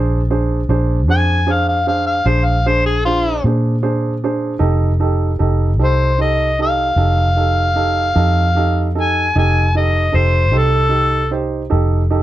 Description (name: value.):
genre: slow blues.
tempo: 51 BPM (dotted quarters).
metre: 12/8.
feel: straight.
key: F mixolydian.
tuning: A4 = 440 Hz.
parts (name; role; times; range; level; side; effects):
warm upright piano; accompaniment; 0.0-12.2 s; D4 to C5; -21 LUFS; right 5 dB; none.
vintage muted fingered electric bass; bass; 0.0-12.2 s; F1 to Bb2; -16 LUFS; equal; none.
overdriven harmonica; melody; 1.1-11.3 s; F4 to Ab5; -17 LUFS; left 2 dB; none.
room: light reverb.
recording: none.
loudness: -13 LUFS.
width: side -14 dB against mid.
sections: 0.0-12.2 A section.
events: none.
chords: 0.0 Bb7; 4.6 F7.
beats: 1.08 2.26 3.44 | 4.62 5.80 6.99 8.17 | 9.35 10.53 11.72.